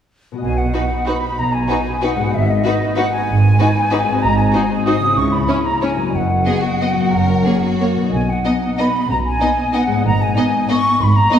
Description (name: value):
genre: classical, orchestral ballroom waltz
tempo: 170-205 BPM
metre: 3/4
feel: rubato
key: B major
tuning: A4 = 440 Hz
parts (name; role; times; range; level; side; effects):
- concert harp; arpeggios; 0.3-11.4 s; F#2 to E5; -21 LUFS; left 4 dB; none
- flute section; second line; 0.4-11.4 s; D#5 to D#6; -19 LUFS; equal; none
- rich chamber double bass section; bass; 0.4-11.2 s; F#1 to C#2; -22 LUFS; right 2 dB; none
- warm chamber cello section; bass; 0.4-11.2 s; F#2 to C#3; -22 LUFS; right 2 dB; none
- rich chamber violin section; melody; 0.7-11.4 s; B4 to D#5; -28 LUFS; left 3 dB; none
- rich chamber violin section; second line; 0.7-11.4 s; D#4 to A#4; -27 LUFS; left 2 dB; none
- rich chamber viola section; accompaniment; 0.7-11.4 s; A#3 to D#4; -22 LUFS; equal; none
room: wet scoring stage reverb, RT60 1.7 s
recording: heard from further back in the room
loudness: -14 LUFS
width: side -9 dB against mid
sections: 0.4-11.4 A section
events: none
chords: 0.4 B; 2.3 G#m7; 4.2 G#7; 5.2 C#m7; 6.1 B/F#; 7.1 F#; 8.1 B; 10.1 G#m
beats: | 0.42 0.74 1.07 | 1.39 1.70 2.03 | 2.34 2.65 2.98 | 3.29 3.60 3.92 | 4.23 4.54 4.87 | 5.17 5.49 5.82 | 6.13 6.46 6.81 | 7.13 7.46 7.81 | 8.13 8.45 8.79 | 9.10 9.41 9.74 | 10.05 10.37 10.70 | 11.01 11.32